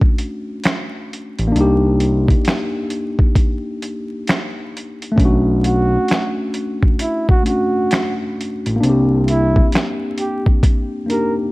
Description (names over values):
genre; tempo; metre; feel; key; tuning
lo-fi hip hop; 66 BPM; 4/4; swing 64% on 16ths; unclear; A4 = 440 Hz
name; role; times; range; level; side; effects
mellow tine electric piano; accompaniment; 0.0-11.5 s; A3 to G4; -20 LUFS; left 1 dB; cassette tape
dusty soul sampler-style drum kit; drums; 0.0-11.4 s; finger snaps, hi-hat, kick drum, snare drum; -16 LUFS; equal; overdrive
smooth gliding synth bass; bass; 1.4-9.6 s; A1 to C2; -17 LUFS; equal; none
breathy flugelhorn; melody; 5.6-11.4 s; E4 to Bb4; -22 LUFS; right 2 dB; none
room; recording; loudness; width
digital ambience; vinyl crackle; -15 LUFS; side -21 dB against mid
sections
0.0-11.5 A section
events
none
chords
0.0 Bm9 (rootless); 1.5 Cm9; 5.2 Bm9; 8.8 Cm9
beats
0.63 | 1.54 2.45 3.36 4.27 | 5.18 6.09 7.00 7.91 | 8.81 9.72 10.63